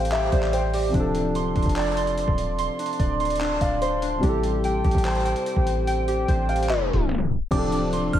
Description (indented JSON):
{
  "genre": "hip hop, trap",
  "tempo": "146 BPM",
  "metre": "4/4",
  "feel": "half-time",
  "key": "D minor",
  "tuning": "A4 = 440 Hz",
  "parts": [
    { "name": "dark concert grand piano", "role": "accompaniment", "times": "0.0-8.2 s", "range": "C3 to F5", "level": "-27 LUFS", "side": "left 2 dB", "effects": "none" },
    { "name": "warbly lo-fi synth keys", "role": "arpeggios", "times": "0.0-8.2 s", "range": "D4 to C6", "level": "-25 LUFS", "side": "right 1 dB", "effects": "chorus, tape echo" },
    { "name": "warm 808-style bass", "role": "bass", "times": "0.0-8.2 s", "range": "D1 to A1", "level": "-26 LUFS", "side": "equal", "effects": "none" },
    { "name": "boom bap sampler-style drum kit", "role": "drums", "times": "0.1-8.2 s", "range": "crash cymbal, handclaps, hi-hat, kick drum", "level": "-28 LUFS", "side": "equal", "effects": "none" },
    { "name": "swell", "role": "sound effects", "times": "6.4-7.5 s", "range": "none", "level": "-37 LUFS", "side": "left 3 dB", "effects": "none" },
    { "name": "delicate synth tine bell", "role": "second line", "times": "7.5-8.2 s", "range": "D6 to F6", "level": "-30 LUFS", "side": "right 2 dB", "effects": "chorus" }
  ],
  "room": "moderate lush hall reverb, RT60 1.9 s",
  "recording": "dreamy mix soaked in reverb, vinyl crackle, tape stop",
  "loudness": "-21 LUFS",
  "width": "side -11 dB against mid",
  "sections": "0.0-7.5 A section",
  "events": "tape stop 6.7-7.5",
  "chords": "0.0 Am7; 0.9 Dm7; 4.2 Am7; 7.5 Dm7"
}